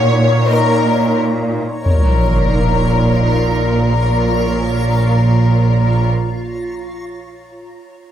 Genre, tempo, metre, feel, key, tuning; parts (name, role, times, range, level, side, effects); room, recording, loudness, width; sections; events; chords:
cinematic; free time; Bb minor; A4 = 440 Hz
warm symphonic violin section; melody; 0.0-6.1 s; Bb4 to Db5; -19 LUFS; left 4 dB
backwards swelling texture; sustained chords; 0.0-6.1 s; Eb4 to Bb5; -23 LUFS; equal; built-in reverb
rich symphonic cello section; bass; 0.0-6.1 s; Bb2; -17 LUFS; right 2 dB
bright concert grand piano; texture; 0.0-1.9 s; Gb4 to Gb5; -36 LUFS; right 1 dB
clear chamber double bass section; bass; 1.9-6.1 s; Bb1; -16 LUFS; right 2 dB
sub drop; sound effects; 1.9-3.9 s; -16 LUFS; left 1 dB
light reverb; close, detailed microphones; -12 LUFS; side -10 dB against mid
0.0-1.9 A section; 1.9-5.9 B section
impact 1.9-3.9
0.0 Ebm7/Bb; 1.9 Bbm